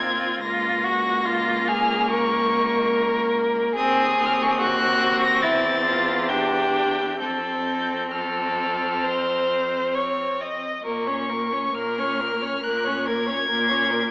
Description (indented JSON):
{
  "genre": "classical, slow romantic movement for string quartet",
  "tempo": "65-73 BPM",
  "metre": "4/4",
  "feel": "rubato",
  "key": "Bb minor",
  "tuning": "A4 = 440 Hz",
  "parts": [
    { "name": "warm violin", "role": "melody", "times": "0.0-14.1 s", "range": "Db6 to Bb6", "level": "-25 LUFS", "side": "left 1 dB", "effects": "none" },
    { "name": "rich violin", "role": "second line", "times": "0.0-14.1 s", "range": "E4 to Eb5", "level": "-23 LUFS", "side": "equal", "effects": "none" },
    { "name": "clear viola", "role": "accompaniment", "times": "0.0-14.1 s", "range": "Bb3 to D4", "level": "-28 LUFS", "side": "equal", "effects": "none" },
    { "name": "warm cello", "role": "bass", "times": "0.0-14.1 s", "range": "Db2 to Bb2", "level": "-30 LUFS", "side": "equal", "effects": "none" }
  ],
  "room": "wet recital hall reverb, RT60 1.8 s",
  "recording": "AM radio sound",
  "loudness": "-20 LUFS",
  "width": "side -25 dB against mid",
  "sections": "0.0-14.1 A section",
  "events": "none",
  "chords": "0.4 Bbm/Db; 3.8 Cdim/Eb; 5.4 C/E; 7.2 F; 10.8 Bbm",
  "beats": "| 0.41 1.26 2.10 2.93 | 3.77 4.60 5.43 6.29 | 7.20 8.11 9.03 9.94 | 10.85 11.73 12.63 13.49"
}